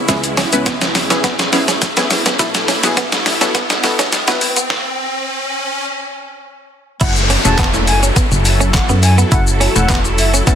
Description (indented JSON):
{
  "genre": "dance-pop",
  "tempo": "104 BPM",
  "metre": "4/4",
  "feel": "straight",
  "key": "unclear",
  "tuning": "A4 = 440 Hz",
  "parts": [
    { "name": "filtered supersaw swell", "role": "sustained chords", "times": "0.0-10.6 s", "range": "C#3 to A4", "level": "-23 LUFS", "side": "equal", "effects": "phaser, sidechain pumping" },
    { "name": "direct-recorded clean electric guitar", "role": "riff", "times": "0.0-10.6 s", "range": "B3 to E4", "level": "-22 LUFS", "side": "right 3 dB", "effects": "wide subtle chorus" },
    { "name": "riser and downlifter", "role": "sound effects", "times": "0.0-10.6 s", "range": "none", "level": "-23 LUFS", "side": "equal", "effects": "none" },
    { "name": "punchy chord stab", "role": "accompaniment", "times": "0.1-10.6 s", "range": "A3 to B4", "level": "-21 LUFS", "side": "left 1 dB", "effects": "chorus, sidechain pumping" },
    { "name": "solid FM bass", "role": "bass", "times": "0.1-10.4 s", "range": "E1 to F#2", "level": "-16 LUFS", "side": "equal", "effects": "sidechain pumping" },
    { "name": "detuned 8-bit digital drum machine", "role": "drums", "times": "0.1-10.6 s", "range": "crash cymbal, handclaps, hi-hat, kick drum, shaker, snare drum", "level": "-15 LUFS", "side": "equal", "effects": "overdrive" },
    { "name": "concert flute", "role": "melody", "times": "7.0-10.3 s", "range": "E5 to A5", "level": "-22 LUFS", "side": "left 2 dB", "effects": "dub echo" }
  ],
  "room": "light reverb",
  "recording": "dense, heavily limited modern master, high-pass filter",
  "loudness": "-12 LUFS",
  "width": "side -9 dB against mid",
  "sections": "0.0-7.0 A section; 7.0-10.6 B section",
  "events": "build-up 0.0-7.0; drum fill 0.0-4.7; riser 0.0-7.0; stop 4.7-7.0; drop 7.0-10.6",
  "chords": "0.0 C#m7; 2.4 B7sus4; 7.0 F#m7",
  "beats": "| 0.09 0.66 1.24 1.82 | 2.39 2.97 3.55 4.12 | 4.70 5.28 5.86 6.43 | 7.01 7.59 8.16 8.74 | 9.32 9.89 10.47"
}